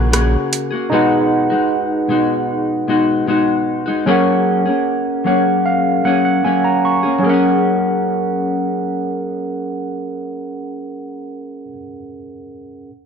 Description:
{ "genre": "indie pop, bedroom pop", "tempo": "76 BPM", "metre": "4/4", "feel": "straight", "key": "F# major", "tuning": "A4 = 440 Hz", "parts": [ { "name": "barky tine electric piano", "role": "accompaniment", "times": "0.0-12.9 s", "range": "C#4 to C#6", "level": "-19 LUFS", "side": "right 4 dB", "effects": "cassette tape" }, { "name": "semi-hollow electric guitar", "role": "accompaniment", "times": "0.0-11.8 s", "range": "B2 to G#4", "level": "-17 LUFS", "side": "left 4 dB", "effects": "wide subtle chorus, warbly pitch drift" }, { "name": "soft vintage rhythm box", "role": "drums", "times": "0.1-0.7 s", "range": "hi-hat, rim click", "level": "-22 LUFS", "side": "right 1 dB", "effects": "none" } ], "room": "moderate plate reverb, RT60 2.1 s", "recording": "none", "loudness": "-14 LUFS", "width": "side -6 dB against mid", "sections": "0.0-7.2 A section; 7.2-10.4 B section", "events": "tine electric piano fill 4.9-7.2", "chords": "0.0 F#add9; 0.9 B6; 4.1 F#add9", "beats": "0.13 | 0.92 1.71 2.50 3.29 | 4.07 4.86 5.65 6.44 | 7.23 8.02 8.81 9.60" }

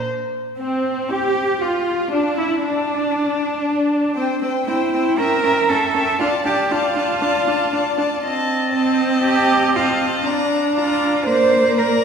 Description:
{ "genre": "quick classical-period movement for string quartet", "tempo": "118 BPM", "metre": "4/4", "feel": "straight", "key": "Bb major from 8.2 s", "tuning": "A4 = 440 Hz", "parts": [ { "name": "rich violin", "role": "second line", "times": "0.0-12.0 s", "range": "C4 to E5", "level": "-23 LUFS", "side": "left 2 dB", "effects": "none" }, { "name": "warm violin", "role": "melody", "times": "0.6-12.0 s", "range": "C4 to Bb5", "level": "-27 LUFS", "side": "left 6 dB", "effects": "none" }, { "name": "warm viola", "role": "accompaniment", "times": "0.6-12.0 s", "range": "Bb3 to G4", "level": "-22 LUFS", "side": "right 2 dB", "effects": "none" }, { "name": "warm cello", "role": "bass", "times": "0.6-12.0 s", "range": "C4 to C5", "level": "-20 LUFS", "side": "right 3 dB", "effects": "none" } ], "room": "wet concert hall reverb, RT60 2.2 s", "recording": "heard from further back in the room", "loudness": "-16 LUFS", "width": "side -6 dB against mid", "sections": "0.1-12.0 A section", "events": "none", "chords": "0.1 N.C.; 1.1 Fsus2; 2.1 Dsus2; 4.2 C; 5.2 A7/C#; 6.2 Dm; 8.2 F7/C; 10.3 Bb/D; 11.3 Bb", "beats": "| 0.06 0.58 1.09 1.61 | 2.12 2.63 3.15 3.66 | 4.17 4.68 5.19 5.69 | 6.20 6.71 7.22 7.73 | 8.23 8.74 9.25 9.75 | 10.26 10.76 11.27 11.78" }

